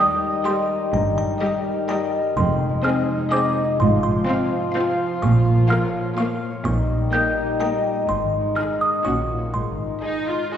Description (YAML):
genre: cinematic, playful, whimsical film cue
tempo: 126 BPM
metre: 3/4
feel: straight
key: unclear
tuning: A4 = 439 Hz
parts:
  - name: music box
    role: melody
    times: 0.0-10.5 s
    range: Bb5 to G6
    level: -25 LUFS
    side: right 2 dB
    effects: none
  - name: rich studio violin section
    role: melody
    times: 0.0-10.6 s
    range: Eb5 to Gb5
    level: -36 LUFS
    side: left 2 dB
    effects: none
  - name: clear studio violin section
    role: second line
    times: 0.0-10.6 s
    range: F4 to Ab4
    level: -32 LUFS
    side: left 1 dB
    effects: none
  - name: clear studio viola section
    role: accompaniment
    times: 0.0-10.6 s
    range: G3 to Gb4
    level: -28 LUFS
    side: equal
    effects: none
  - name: clear French horn section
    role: sustained chords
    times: 0.0-10.6 s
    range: F3 to Gb4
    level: -26 LUFS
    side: left 1 dB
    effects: none
  - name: concert harp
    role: arpeggios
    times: 0.0-10.6 s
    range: F2 to Bb5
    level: -25 LUFS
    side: left 3 dB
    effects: none
  - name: clear studio cello section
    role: bass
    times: 0.9-9.9 s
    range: F2 to Bb2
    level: -26 LUFS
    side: right 2 dB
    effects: none
  - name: rich studio double bass section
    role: bass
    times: 0.9-9.9 s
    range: F1 to Bb1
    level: -23 LUFS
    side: right 2 dB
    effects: none
room: wet scoring stage reverb, RT60 1.9 s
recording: heard from further back in the room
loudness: -19 LUFS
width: side -9 dB against mid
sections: 0.0-10.6 A section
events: none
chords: 0.0 Eb; 0.9 Eb/G; 2.4 Fm7; 3.8 Fm/Ab; 5.2 Bbm; 6.7 Eb7/Bb; 8.1 Ab; 9.1 Gb/Bb; 9.5 Ab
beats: 0.46 | 0.94 1.42 1.89 | 2.37 2.84 3.32 | 3.79 4.27 4.75 | 5.22 5.70 6.18 | 6.66 7.13 7.61 | 8.09 8.57 9.05 | 9.54 10.03 10.52